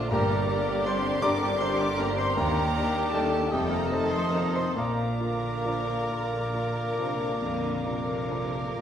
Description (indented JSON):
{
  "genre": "classical, romantic movement for piano and orchestra",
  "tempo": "44-54 BPM (dotted quarters)",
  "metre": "12/8",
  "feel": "rubato",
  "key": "Bb major",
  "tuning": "A4 = 439 Hz",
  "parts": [
    { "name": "clear symphonic violin section", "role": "melody", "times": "0.0-8.8 s", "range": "G4 to Bb4", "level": "-38 LUFS", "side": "left 2 dB", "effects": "none" },
    { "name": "warm concert grand piano", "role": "melody", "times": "0.0-8.8 s", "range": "Eb2 to D6", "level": "-29 LUFS", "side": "left 2 dB", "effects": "none" },
    { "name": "rich studio violin section", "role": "second line", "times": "0.0-8.8 s", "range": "G5 to D6", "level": "-37 LUFS", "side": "right 2 dB", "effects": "none" },
    { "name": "silver concert flute", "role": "second line", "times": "0.0-8.8 s", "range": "D6 to Eb6", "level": "-36 LUFS", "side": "left 1 dB", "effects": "none" },
    { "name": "rich chamber viola section", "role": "accompaniment", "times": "0.0-8.8 s", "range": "D3 to D4", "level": "-38 LUFS", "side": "right 2 dB", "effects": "none" },
    { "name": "warm bassoon", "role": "accompaniment", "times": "0.0-8.8 s", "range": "G3 to Bb3", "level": "-35 LUFS", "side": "equal", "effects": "none" },
    { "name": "dark French horn section", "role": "sustained chords", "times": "0.0-8.8 s", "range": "G3 to D4", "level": "-35 LUFS", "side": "left 3 dB", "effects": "none" },
    { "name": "dark clarinet", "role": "second line", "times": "0.1-8.8 s", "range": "G4 to D5", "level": "-36 LUFS", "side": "left 1 dB", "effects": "none" },
    { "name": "dark cor anglais", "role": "second line", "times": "0.1-8.8 s", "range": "Bb4 to G5", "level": "-36 LUFS", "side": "right 1 dB", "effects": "none" },
    { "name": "clear chamber double bass section", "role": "bass", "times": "0.1-8.8 s", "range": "F1 to Eb2", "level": "-36 LUFS", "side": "right 3 dB", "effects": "none" },
    { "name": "clear symphonic cello section", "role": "bass", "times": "0.1-8.8 s", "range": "Eb2 to D3", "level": "-35 LUFS", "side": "right 2 dB", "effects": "none" },
    { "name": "clear trombone section", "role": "sustained chords", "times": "0.8-8.4 s", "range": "F3 to Eb4", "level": "-40 LUFS", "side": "right 4 dB", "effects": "none" }
  ],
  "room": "wet scoring stage reverb, RT60 1.6 s",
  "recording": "none",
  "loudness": "-24 LUFS",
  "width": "side -9 dB against mid",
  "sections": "0.0-8.8 A section",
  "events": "none",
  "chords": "0.1 Gm; 2.4 Ebmaj7; 3.5 F9; 4.8 Bb"
}